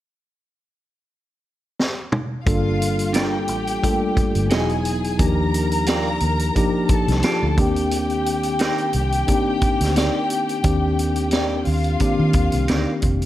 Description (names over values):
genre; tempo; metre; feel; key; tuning
lush 1970s-style soul; 88 BPM; 4/4; swing 54% on 16ths; unclear; A4 = 440 Hz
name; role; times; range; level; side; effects
vintage drum kit; drums; 1.8-13.3 s; hi-hat, kick drum, snare drum, toms; -23 LUFS; equal; none
warm studio string section; second line; 2.5-13.0 s; F4 to Bb5; -26 LUFS; left 2 dB; none
mellow tine electric piano; accompaniment; 2.5-13.3 s; Eb3 to A4; -22 LUFS; left 1 dB; fast stereo tremolo
vintage muted fingered electric bass; bass; 2.5-13.3 s; E1 to Eb3; -23 LUFS; equal; none
semi-hollow electric guitar; riff; 3.1-12.9 s; D4 to D#5; -26 LUFS; right 4 dB; phaser
room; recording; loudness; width
light reverb, small room ambience; none; -18 LUFS; side -14 dB against mid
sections
0.0-2.5 A section; 2.5-13.3 B section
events
drum fill 1.8-2.5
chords
0.0 N.C.; 2.5 Gm7; 4.5 Emaj9; 5.2 Ebmaj9; 7.6 Cm9